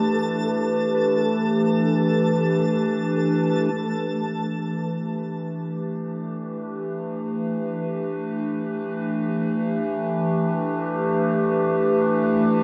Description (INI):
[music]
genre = ambient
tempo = free time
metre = none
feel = none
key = E minor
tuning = A4 = 443 Hz
[part]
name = warbly tape-like pad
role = sustained chords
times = 0.0-12.6 s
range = E3 to B4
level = -24 LUFS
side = equal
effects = chorus, built-in reverb, phaser
[part]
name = muted felt-like synth keys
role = arpeggios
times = 0.0-3.8 s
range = B4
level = -32 LUFS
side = equal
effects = none
[part]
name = twinkling granular texture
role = texture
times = 0.0-3.8 s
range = A4 to A5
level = -33 LUFS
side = equal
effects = built-in reverb
[sound]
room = wet cathedral reverb, RT60 6.8 s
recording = worn, warbling old tape, cassette tape, warbly pitch drift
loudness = -24 LUFS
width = mono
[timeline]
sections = 0.0-3.7 A section; 3.7-12.6 B section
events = filter sweep on ambient pad 0.0-3.7; fade-in on ambient pad 3.7-12.6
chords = 0.0 Em7